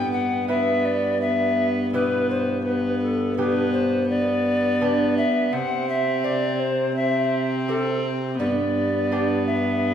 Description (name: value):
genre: classical, renaissance-style consort dance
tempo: 84 BPM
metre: 4/4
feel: straight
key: unclear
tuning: A4 = 440 Hz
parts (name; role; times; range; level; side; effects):
- mellow tenor recorder; melody; 0.0-9.9 s; A4 to G5; -24 LUFS; left 2 dB; none
- lute; accompaniment; 0.0-9.9 s; G2 to B4; -29 LUFS; right 3 dB; none
- rich viola; accompaniment; 0.0-9.9 s; B3 to C4; -25 LUFS; left 1 dB; none
- clear trombone; bass; 0.0-9.9 s; G2 to C3; -27 LUFS; right 1 dB; none
room: wet recital hall reverb, RT60 1.7 s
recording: heard from further back in the room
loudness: -20 LUFS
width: side -9 dB against mid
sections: 0.0-9.9 A section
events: none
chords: 0.0 Em/G; 2.7 G; 5.5 C5; 8.4 G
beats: 0.49 1.21 1.93 | 2.65 3.38 4.09 4.81 | 5.53 6.24 6.96 7.68 | 8.40 9.11 9.83